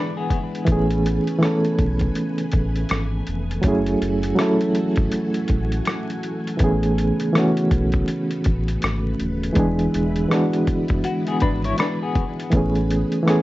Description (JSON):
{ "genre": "lo-fi hip hop", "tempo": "81 BPM", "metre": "4/4", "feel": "swing 63% on 16ths", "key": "A major", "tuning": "A4 = 440 Hz", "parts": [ { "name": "semi-hollow electric guitar", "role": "second line", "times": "0.0-0.7, 11.0-12.5 s", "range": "B3 to C#5", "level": "-27 LUFS", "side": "left 4 dB", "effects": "tremolo, low-pass filter, tape echo" }, { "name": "bright reed electric piano", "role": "accompaniment", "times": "0.0-13.4 s", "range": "E3 to A4", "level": "-21 LUFS", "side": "right 1 dB", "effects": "fast tremolo, low-pass filter" }, { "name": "string machine, full ensemble", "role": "sustained chords", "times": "0.0-13.4 s", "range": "C#3 to G#5", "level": "-31 LUFS", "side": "left 1 dB", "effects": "ensemble chorus, low-pass filter" }, { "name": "lo-fi sampler-style drum kit", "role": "drums", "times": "0.3-13.4 s", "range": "hi-hat, kick drum, rim click", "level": "-24 LUFS", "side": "equal", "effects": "overdrive" }, { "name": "sub bass with octave", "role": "bass", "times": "0.7-13.0 s", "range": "D#1 to B1", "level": "-25 LUFS", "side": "equal", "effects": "none" } ], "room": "moderate studio reverb, RT60 0.5 s", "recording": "dark, warm production, vinyl crackle, nothing above 7.7 kHz", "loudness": "-18 LUFS", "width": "side -17 dB against mid", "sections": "0.0-13.4 A section", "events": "none", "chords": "0.0 E7; 0.7 Amaj9; 3.6 F#m9; 6.6 Amaj9; 9.6 E7; 12.5 Amaj9" }